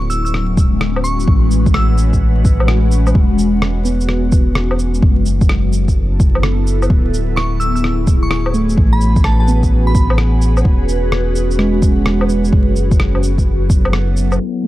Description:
future garage; 128 BPM; 4/4; swing 65% on 16ths; F# minor; A4 = 440 Hz
glassy synth bell; melody; 0.0-2.1, 7.4-10.5 s; A5 to E6; -24 LUFS; right 1 dB; chorus, tape echo
ethereal airy pad; sustained chords; 0.0-14.7 s; F#3 to B4; -20 LUFS; left 2 dB; ensemble chorus, built-in reverb, phaser, sidechain pumping
warm sub bass; bass; 0.0-14.4 s; D1 to A1; -16 LUFS; equal; sidechain pumping
electronic shaker, rim click and woodblock; drums; 0.1-14.7 s; -22 LUFS; equal; overdrive, low-pass filter on perc, low-pass filter on snare
electronic kick drum; drums; 0.6-13.8 s; -13 LUFS; equal
mellow tine electric piano; accompaniment; 3.9-5.2, 8.5-14.7 s; G#3 to B3; -21 LUFS; right 2 dB; auto-pan, sidechain pumping, analog delay
little or no reverb; vinyl crackle, low-pass filter; -12 LUFS; side -16 dB against mid
0.0-14.4 A section
0.0 D; 1.3 A; 3.2 E; 5.0 F#m; 6.9 D; 8.8 A; 10.7 E; 12.5 F#m

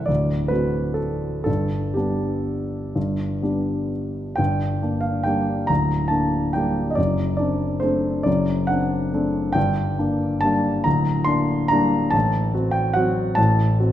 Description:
classical, piano waltz; 119-151 BPM; 3/4; rubato; G major, G minor from 4.4 s; A4 = 440 Hz
warm concert grand piano; solo; 0.0-13.9 s; C1 to C6; -19 LUFS; equal
wet recital hall reverb, RT60 1.7 s; -19 LUFS; side -11 dB against mid
0.0-4.4 A section; 4.4-13.9 B section
0.1 D7; 1.5 G; 4.4 Gm; 7.0 D7/F#; 9.6 Gm; 12.1 F#dim/A

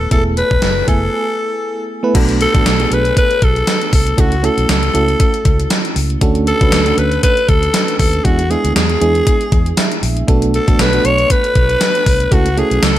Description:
1980s-style pop; 118 BPM; 4/4; swing 55% on 16ths; A4 = 441 Hz
raspy alto saxophone; melody; 0.0-13.0 s; F#4 to C#5; -16 LUFS; left 1 dB; digital delay
FM electric piano with tremolo; accompaniment; 0.0-13.0 s; G#3 to G#5; -19 LUFS; right 3 dB
vintage muted fingered electric bass; bass; 0.0-13.0 s; E1 to E2; -18 LUFS; equal
gated 80s digital drum machine; drums; 0.1-13.0 s; crash cymbal, hi-hat, kick drum, snare drum, tambourine; -15 LUFS; equal; gated reverb, gated reverb snare, overdrive
little or no reverb; -11 LUFS; side -13 dB against mid
0.0-2.1 A section; 2.1-13.0 B section
break 1.1-2.1; FM electric piano fill 9.5-10.3
0.0 Esus4; 2.1 Bm7; 4.2 F#m7; 6.2 Dmaj7; 8.2 E7; 10.3 Bm7; 12.3 F#m7

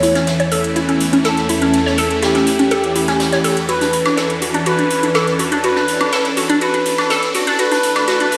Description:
progressive house; 123 BPM; 4/4; straight; A4 = 440 Hz
expressive synth lead; melody; 0.0-8.4 s; G4 to C#5; -22 LUFS; equal; chorus, tape echo
supersaw pad; sustained chords; 0.0-8.4 s; E2 to A4; -22 LUFS; equal; phaser
glassy wavetable pluck; arpeggios; 0.0-8.3 s; C#4 to C#5; -20 LUFS; equal; chorus, phaser, tape echo
electronic hi-hat and woodblock; drums; 0.0-8.4 s; -26 LUFS; equal; overdrive
natural country drum kit; drums; 0.0-8.4 s; hi-hat, ride cymbal, snare drum; -29 LUFS; equal; high-pass filter on cymbals, high-pass filter on hats, high-pass filter on snare, high-pass filter on room
wet digital room reverb, RT60 1.1 s, small room ambience; played on a big sound system in a bare room, stone room reverb, high-pass filter; -16 LUFS; mono
0.0-8.4 A section
build-up 0.0-8.4; filter sweep on synth arpeggio sound 0.0-8.4
0.0 A/E; 3.7 Bm7/E; 7.6 Dsus2/E

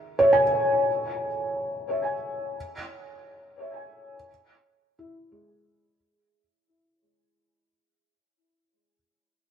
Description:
ambient; free time; A4 = 440 Hz
felt-muted upright piano; solo; 0.0-9.0 s; G#3 to G#5; -23 LUFS; equal; wide subtle chorus, diffuse ambient delay
wet plate reverb, RT60 2.8 s; dreamy mix soaked in reverb; -22 LUFS; side -8 dB against mid
0.0-6.0 A section
fade-out 1.4-6.0
0.0 C#m; 2.6 E

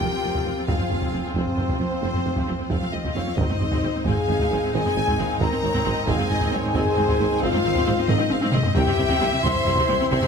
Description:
cinematic, epic orchestral film score; 89 BPM (dotted quarters); 12/8; straight; F minor; A4 = 441 Hz
rich studio violin section; melody; 0.0-10.3 s; C5 to C6; -32 LUFS; left 3 dB
mellow large flute ensemble; second line; 0.0-10.3 s; C5 to C6; -30 LUFS; left 2 dB
warm symphonic violin section; second line; 0.0-10.3 s; Ab4 to Ab5; -30 LUFS; left 2 dB
rich symphonic viola section; accompaniment; 0.0-10.3 s; C4 to F4; -30 LUFS; left 1 dB
mellow French horn section; sustained chords; 0.0-10.3 s; C4 to C5; -27 LUFS; left 5 dB
warm trombone section; sustained chords; 0.0-10.3 s; Eb3 to C4; -32 LUFS; right 4 dB
rich symphonic cello section; bass; 0.0-10.3 s; F2 to C3; -30 LUFS; right 2 dB
rich symphonic double bass section; bass; 0.0-10.2 s; F1 to C2; -30 LUFS; right 4 dB
warm tuba; bass; 0.0-10.2 s; F1 to C2; -31 LUFS; right 6 dB
solo taiko drums; drums; 0.0-10.3 s; -26 LUFS; equal
moderate scoring stage reverb, RT60 1.6 s; close, detailed microphones; -20 LUFS; side -6 dB against mid
0.0-10.3 A section
drum fill 8.1-8.8
0.0 F5; 3.4 Ab; 8.8 C

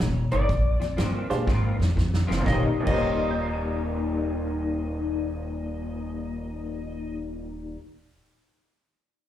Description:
electric blues shuffle; 122 BPM; 4/4; swing 65% on 8ths; Eb mixolydian; A4 = 440 Hz
electric slide guitar; melody; 0.0-7.2 s; Db5 to Eb5; -33 LUFS; left 2 dB; slapback echo
electric guitar through a small old amp; riff; 0.0-7.8 s; Eb2 to F4; -30 LUFS; left 4 dB; ensemble chorus, slapback echo
upright bass; bass; 0.0-7.7 s; Eb1 to Bb2; -28 LUFS; equal
natural country drum kit; drums; 0.0-3.0 s; crash cymbal, hi-hat, kick drum, snare drum; -29 LUFS; right 1 dB
bright upright piano; accompaniment; 1.3-8.2 s; Eb2 to Eb7; -31 LUFS; right 3 dB; slapback echo
little or no reverb; live gig heard through the venue's PA, club reverb; -24 LUFS; side -11 dB against mid
0.0-2.5 A section; 2.5-6.4 B section
drum fill 1.5-2.5
0.5 Bb13; 2.5 Eb13

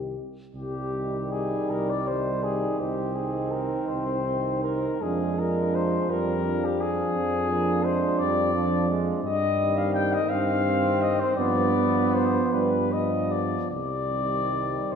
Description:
classical, hymn-like piece for brass band; 55 BPM (dotted quarters); 12/8; uneven beats, rubato; C minor; A4 = 440 Hz
mellow French horn section; second line; 0.0-15.0 s; B3 to G4; -31 LUFS; right 7 dB
bright trombone; accompaniment; 0.0-15.0 s; Eb3 to C4; -30 LUFS; right 1 dB
warm euphonium; accompaniment; 0.0-15.0 s; Eb3 to C4; -33 LUFS; equal
mellow tuba; bass; 0.0-15.0 s; C2 to G2; -30 LUFS; right 1 dB
warm flugelhorn; melody; 0.5-15.0 s; G4 to G5; -28 LUFS; left 4 dB
wet scoring stage reverb, RT60 1.7 s; minimal, uncompressed stereo recording; -23 LUFS; side -7 dB against mid
0.5-15.0 A section
0.0 Cm; 5.0 Ddim/F; 9.2 Cm/G; 11.4 G7; 13.7 Cm

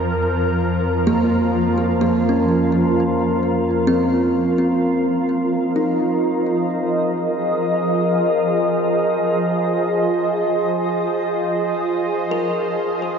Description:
ambient; 64 BPM; 4/4; straight; F minor; A4 = 439 Hz
shimmering ambient pad; sustained chords; 0.0-13.2 s; F3 to Eb5; -18 LUFS; equal; chorus, built-in reverb
kalimba; arpeggios; 0.0-13.2 s; Bb3 to Bb4; -21 LUFS; right 1 dB; ping-pong delay
warm studio cello section; bass; 0.0-4.8 s; F2; -24 LUFS; equal
bowed-like drone; drone; 0.0-13.2 s; F3 to C5; -36 LUFS; equal
wet lush hall reverb, RT60 2.7 s; worn, warbling old tape, cassette tape, warbly pitch drift, nothing above 7.5 kHz; -17 LUFS; side -6 dB against mid
0.0-4.8 A section; 4.8-13.2 B section
fade-in on synth drone 4.8-13.2
0.0 Eb7(no3)/F (rootless); 4.8 Fm7

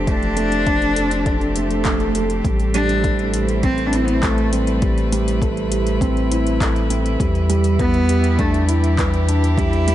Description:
piano and strings electronica; 101 BPM; 4/4; straight; A minor; A4 = 439 Hz
rich string quartet; sustained chords; 0.0-9.9 s; E3 to C5; -26 LUFS; equal
felt-muted upright piano; riff; 0.0-9.9 s; G3 to C5; -22 LUFS; right 2 dB; ping-pong delay
warm sub bass; bass; 0.0-9.9 s; F1 to E2; -21 LUFS; left 1 dB; tube saturation, sidechain pumping
warm cello; melody; 0.1-9.9 s; G3 to E4; -23 LUFS; left 1 dB; ping-pong delay
deep house drum kit; drums; 0.1-9.9 s; handclaps, hi-hat; -28 LUFS; left 1 dB; overdrive
electronic kick drum; drums; 0.1-9.7 s; -22 LUFS; left 1 dB; overdrive
swell; sound effects; 1.5-2.4 s; -28 LUFS; right 1 dB
light reverb, small room ambience; nothing above 10.9 kHz; -16 LUFS; side -12 dB against mid
0.0-9.9 A section
swell 1.5-2.4
0.0 F6; 2.4 Am7; 7.2 Em7

